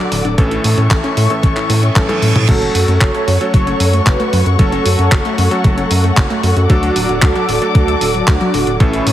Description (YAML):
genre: italo disco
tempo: 114 BPM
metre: 4/4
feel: straight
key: F# minor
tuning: A4 = 439 Hz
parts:
  - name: muted studio string section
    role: sustained chords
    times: 0.0-9.1 s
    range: A4 to D6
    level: -21 LUFS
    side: left 4 dB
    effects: none
  - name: wide unison pluck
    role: arpeggios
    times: 0.0-9.1 s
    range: D3 to A4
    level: -22 LUFS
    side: left 1 dB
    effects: tape echo
  - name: clear electric grand piano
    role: stabs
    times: 0.0-9.1 s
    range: A2 to A4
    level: -21 LUFS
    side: right 1 dB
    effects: none
  - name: round analog bass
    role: bass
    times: 0.1-9.1 s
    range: D1 to A2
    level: -16 LUFS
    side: equal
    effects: none
  - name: clean 12-bit digital drum machine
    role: drums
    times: 0.1-9.1 s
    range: crash cymbal, handclaps, hi-hat, toms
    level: -20 LUFS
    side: equal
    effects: none
  - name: electronic kick drum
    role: drums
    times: 0.4-8.9 s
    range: none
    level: -13 LUFS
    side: equal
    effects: none
  - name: reverse cymbal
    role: sound effects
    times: 1.7-2.5 s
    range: none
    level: -24 LUFS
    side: right 6 dB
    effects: none
  - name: mellow synth brass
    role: melody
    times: 2.5-9.1 s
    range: C#4 to C#5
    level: -18 LUFS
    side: right 2 dB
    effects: chorus, ping-pong delay
room: light reverb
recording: heavily compressed radio sound, multiband compression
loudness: -11 LUFS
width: side -12 dB against mid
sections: 0.0-2.5 A section; 2.5-9.1 B section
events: reverse cymbal 1.7-2.5; drum fill 2.0-2.5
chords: 0.4 A; 2.5 F#m; 6.7 D